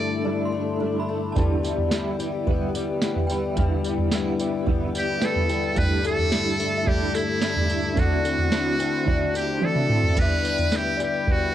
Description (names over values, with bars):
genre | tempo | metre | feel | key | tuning
dream pop | 109 BPM | 4/4 | straight | G major | A4 = 441 Hz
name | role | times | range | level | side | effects
trumpet with metal mute | melody | 0.0-0.3, 5.0-11.5 s | E4 to D5 | -26 LUFS | right 2 dB | cassette tape, analog delay
clean electric guitar | accompaniment | 0.0-10.2 s | G2 to E4 | -30 LUFS | right 9 dB | tremolo, ensemble chorus, cassette tape
mellow tonewheel organ | sustained chords | 0.0-11.5 s | G2 to B4 | -30 LUFS | left 5 dB | chorus vibrato, stopped rotary speaker, cassette tape
fingerpicked twelve-string acoustic guitar | arpeggios | 0.0-11.5 s | G2 to E4 | -28 LUFS | left 6 dB | analog chorus, cassette tape, analog delay
synth chime | texture | 0.0-11.5 s | D5 to C6 | -37 LUFS | right 1 dB | ensemble chorus, cassette tape, analog delay, plate reverb
soft vintage rhythm box | drums | 1.4-11.4 s | crash cymbal, kick drum, snare drum, tambourine, toms | -24 LUFS | right 1 dB | cassette tape
room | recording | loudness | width
light reverb | home recording on cassette | -21 LUFS | side -11 dB against mid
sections
0.0-10.2 A section; 10.2-11.5 B section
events
drum fill 9.6-10.2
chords
0.0 A7sus4/G; 1.4 G6; 5.8 A7sus4/G; 8.0 D9; 10.2 G6